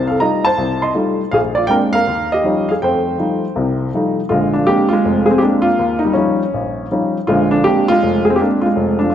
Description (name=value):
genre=solo jazz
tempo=161 BPM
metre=4/4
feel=swing 66% on 8ths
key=Bb mixolydian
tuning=A4 = 438 Hz
part: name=warm baby grand piano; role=solo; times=0.0-9.1 s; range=F1 to C6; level=-13 LUFS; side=equal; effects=none
room=moderate concert hall reverb, RT60 1.9 s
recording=recorded in a church or concert hall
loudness=-13 LUFS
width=side -10 dB against mid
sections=0.0-4.3 A section; 4.3-9.1 A section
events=none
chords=0.0 F9; 1.3 Bb9; 2.1 Eb9; 2.8 F9; 4.3 Bb9; 5.8 Eb9; 7.3 Bb9